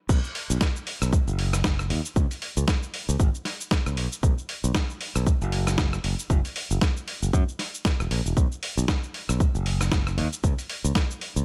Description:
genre	deep house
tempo	116 BPM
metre	4/4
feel	swing 58% on 16ths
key	B major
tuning	A4 = 439 Hz
part	modern bright fingered electric bass	bass	0.1-11.4 s	E1 to F#2	-28 LUFS	equal	sidechain pumping
part	dusty soul sampler-style drum kit	drums	0.1-11.4 s	crash cymbal, hi-hat, rim click, shaker, snare drum	-32 LUFS	equal	small room ambience
part	electronic kick drum	drums	0.1-11.1 s	none	-26 LUFS	equal	small room ambience
room	little or no reverb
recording	none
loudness	-26 LUFS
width	mono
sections	0.1-11.4 A section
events	drop 0.1-11.4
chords	none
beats	| 0.09 0.61 1.13 1.64 | 2.16 2.68 3.20 3.71 | 4.23 4.75 5.26 5.78 | 6.30 6.82 7.33 7.85 | 8.37 8.88 9.40 9.92 | 10.44 10.95

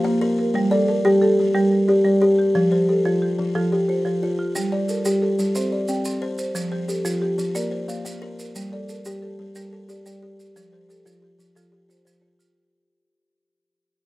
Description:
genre	southern african traditional, mbira-style interlocking cycle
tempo	120 BPM (dotted quarters)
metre	12/8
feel	straight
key	unclear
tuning	A4 = 440 Hz
part	buzzing kalimba	arpeggios	0.0-12.6 s	F3 to F5	-21 LUFS	left 1 dB	none
part	marimba with medium mallets	arpeggios	0.0-12.7 s	F3 to G5	-24 LUFS	right 2 dB	none
part	maracas	percussion	4.6-12.6 s	none	-37 LUFS	right 3 dB	none
room	little or no reverb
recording	recorded outdoors, with no room sound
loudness	-18 LUFS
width	side -18 dB against mid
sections	0.0-12.6 A section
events	fade-out 0.0-12.6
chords	0.0 Bb5; 0.6 Gm; 2.5 F; 4.6 Gm; 5.6 C; 6.6 F; 7.6 Bb; 8.6 Gm; 10.6 F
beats	0.05 | 0.55 1.05 1.55 2.05 | 2.55 3.05 3.55 4.05 | 4.55 5.05 5.55 6.06 | 6.56 7.06 7.56 8.06 | 8.56 9.06 9.56 10.06 | 10.56 11.06 11.56 12.06

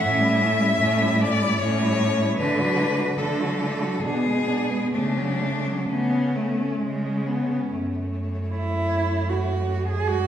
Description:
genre	classical, lyrical piece for cello ensemble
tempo	62-78 BPM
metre	3/4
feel	rubato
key	F# minor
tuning	A4 = 441 Hz
part	rich cello	melody	0.0-10.3 s	C#4 to E5	-26 LUFS	left 4 dB	none
part	rich cello	second line	0.0-10.3 s	G#3 to G#4	-28 LUFS	right 3 dB	none
part	clear cello	accompaniment	0.0-10.3 s	F#3 to B3	-28 LUFS	left 2 dB	none
part	rich cello	bass	0.0-10.3 s	F#2 to D3	-25 LUFS	right 1 dB	none
room	wet recital hall reverb, RT60 1.7 s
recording	heard from further back in the room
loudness	-21 LUFS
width	side -10 dB against mid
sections	0.0-7.7 A section; 7.7-10.3 B section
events	none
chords	0.0 A7; 2.4 D; 4.0 G#dim/B; 4.9 F#m/C#; 6.8 C#5; 7.7 F#m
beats	| 0.01 0.80 1.60 | 2.39 3.19 4.03 | 4.93 5.89 6.82 | 7.71 8.51 9.29 | 10.07

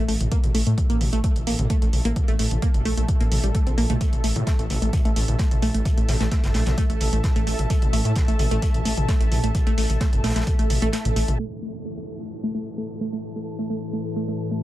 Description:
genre	driving peak-time techno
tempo	130 BPM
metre	4/4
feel	straight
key	unclear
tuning	A4 = 440 Hz
part	wide unison pluck	riff	0.0-14.6 s	G3 to C4	-28 LUFS	equal	tube saturation, sidechain pumping, dub echo
part	detuned saw bass	bass	0.0-11.3 s	G1 to A2	-23 LUFS	equal	sidechain pumping
part	granular cloud pad	texture	0.0-14.6 s	A4 to A5	-33 LUFS	equal	built-in reverb, sidechain pumping
part	punchy analog drum machine	drums	0.1-11.5 s	crash cymbal, hi-hat, toms	-30 LUFS	left 1 dB	sidechain pumping on hats, sidechain pumping on toms, sidechain pumping on cymbals
part	electronic kick drum	drums	0.3-10.6 s	none	-22 LUFS	equal	none
part	vintage drum kit	drums	4.0-11.3 s	hi-hat, snare drum	-37 LUFS	equal	high-pass filter on hats, high-pass filter on snare, high-pass filter on room
part	metallic inharmonic drone	drone	11.9-14.6 s	A2 to E3	-32 LUFS	left 3 dB	chorus, built-in reverb, phaser, sidechain pumping
part	downlifter	sound effects	11.5-14.6 s	none	-40 LUFS	right 1 dB	none
room	little or no reverb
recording	low-pass filter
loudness	-20 LUFS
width	side -15 dB against mid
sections	0.0-11.4 A section; 11.4-14.6 B section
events	fade-in on ambient pad 0.0-11.4; kick drops out 10.9-11.4; filter sweep 11.4-14.6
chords	0.0 A5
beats	| 0.32 0.78 1.24 1.70 | 2.16 2.62 3.08 3.55 | 4.01 4.47 4.93 5.39 | 5.86 6.32 6.78 7.24 | 7.70 8.16 8.62 9.09 | 9.55 10.01 10.47 10.93 | 11.39 11.86 12.32 12.78 | 13.24 13.70 14.16 14.62

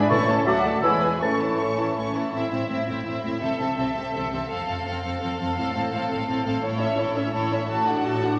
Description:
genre	quick classical-period movement for symphony orchestra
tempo	167 BPM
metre	3/4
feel	straight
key	A minor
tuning	A4 = 444 Hz
part	rich studio violin section	melody	0.0-8.4 s	C#5 to C#6	-32 LUFS	equal	none
part	mellow clarinet	second line	0.0-2.0 s	A4 to E5	-30 LUFS	equal	none
part	rich studio violin section	second line	0.0-8.4 s	C#4 to C#5	-32 LUFS	equal	none
part	rich studio viola section	accompaniment	0.0-8.4 s	E3 to F#4	-32 LUFS	equal	none
part	warm French horn section	sustained chords	0.0-2.1 s	G#3 to F#4	-32 LUFS	equal	none
part	dark studio cello section	bass	0.0-8.4 s	D2 to C3	-34 LUFS	equal	none
part	warm studio double bass section	bass	0.0-8.4 s	E1 to D2	-37 LUFS	equal	none
part	bright large flute ensemble	second line	0.1-1.4 s	C#6 to E6	-29 LUFS	equal	none
part	warm oboe	second line	0.1-1.4 s	G#5 to A5	-32 LUFS	equal	none
part	dark bassoon	accompaniment	0.1-1.3 s	E3 to F#3	-31 LUFS	equal	none
room	wet scoring stage reverb, RT60 1.6 s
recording	none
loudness	-25 LUFS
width	mono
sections	0.0-2.3 A section; 2.3-8.4 B section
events	none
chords	0.1 A; 0.5 D; 0.8 E; 1.2 A; 2.3 Am; 3.4 Am/C; 4.5 F; 5.6 F/A; 6.6 A; 7.7 D/A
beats	| 0.11 0.47 0.84 | 1.22 1.59 1.96 | 2.33 2.69 3.06 | 3.42 3.78 4.14 | 4.50 4.86 5.21 | 5.57 5.92 6.28 | 6.64 6.99 7.34 | 7.70 8.06

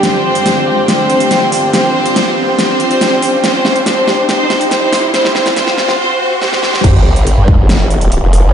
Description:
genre	heavy wobble dubstep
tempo	141 BPM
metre	4/4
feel	half-time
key	unclear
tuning	A4 = 440 Hz
part	clear studio violin section	melody	0.0-6.8 s	C4 to C5	-14 LUFS	equal	ping-pong delay
part	supersaw chords	sustained chords	0.0-6.0 s	G2 to F4	-19 LUFS	right 1 dB	phaser, sidechain pumping
part	big-room dance drum kit	drums	0.0-8.4 s	crash cymbal, hi-hat, snare drum	-16 LUFS	equal	none
part	riser and sub drop	sound effects	0.0-8.5 s	none	-18 LUFS	equal	none
part	dark studio string section	texture	0.0-6.0 s	D4 to G5	-17 LUFS	equal	sidechain pumping
part	formant-sweep wobble bass	bass	6.8-8.5 s	F1 to G2	-10 LUFS	equal	chorus, overdrive
part	electronic kick drum	drums	6.8-7.6 s	none	-10 LUFS	equal	none
room	moderate digital room reverb, RT60 1.1 s, digital ambience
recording	played on a big sound system in a bare room, large studio reverb, high-pass filter, nothing above 10.5 kHz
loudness	-9 LUFS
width	side -8 dB against mid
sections	0.0-6.8 A section; 6.8-8.5 B section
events	build-up 0.0-6.8; riser 0.0-6.8; filter sweep 0.0-6.8; drum fill 0.0-6.0, 6.4-6.8; drop 6.8-8.5; impact 6.8-8.5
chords	0.0 G5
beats	| 0.03 0.46 0.88 1.31 | 1.74 2.16 2.59 3.01 | 3.44 3.86 4.29 4.71 | 5.14 5.57 5.99 6.42 | 6.84 7.27 7.69 8.12

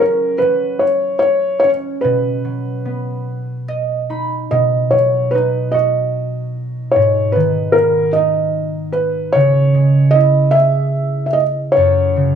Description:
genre	children's music, lullaby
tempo	49 BPM (dotted quarters)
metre	6/8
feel	rubato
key	B major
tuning	A4 = 440 Hz
part	felt-muted upright piano	melody	0.0-12.4 s	A#4 to E5	-14 LUFS	equal	none
part	concert harp	accompaniment	0.0-12.4 s	F#2 to B5	-18 LUFS	right 1 dB	none
room	moderate large studio reverb, RT60 1.1 s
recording	band playing live in one room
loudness	-13 LUFS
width	side -8 dB against mid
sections	0.0-4.5 A section; 4.5-12.4 B section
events	harp fill 3.3-4.5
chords	0.0 F#5; 2.0 B; 6.9 G#m; 9.3 C#m; 11.8 F#5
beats	0.82 | 2.04 3.27 | 4.51 5.73 | 6.95 8.15 | 9.35 10.55 | 11.76

